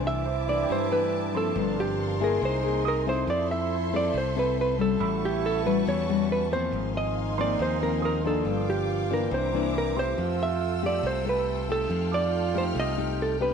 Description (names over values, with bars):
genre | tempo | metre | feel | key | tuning
bossa nova | 139 BPM | 4/4 | straight | C major | A4 = 442 Hz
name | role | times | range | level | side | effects
hollow-body jazz guitar | melody | 0.0-13.5 s | G4 to E5 | -28 LUFS | right 3 dB | none
mellow trombone | second line | 0.0-13.4 s | D4 to F4 | -34 LUFS | right 12 dB | none
nylon-string guitar | accompaniment | 0.0-13.5 s | G2 to A4 | -29 LUFS | left 10 dB | none
warm symphonic string section | sustained chords | 0.0-13.5 s | Bb3 to F6 | -37 LUFS | left 1 dB | none
fingered electric bass | bass | 0.0-13.5 s | G1 to G2 | -31 LUFS | right 1 dB | none
warm grand piano | accompaniment | 0.3-13.5 s | C5 to E6 | -39 LUFS | right 11 dB | none
room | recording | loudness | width
moderate echo chamber reverb, RT60 1.6 s, studio reverb | 1960s-style stereo with parts hard left and right | -24 LUFS | side -6 dB against mid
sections
0.0-13.5 A section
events
none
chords
0.0 C69; 1.6 Gm11; 2.4 C7alt; 3.3 Fmaj7; 5.0 A13; 6.7 Ab69; 8.5 Gm7; 9.3 C9; 10.2 Fmaj9; 11.9 F9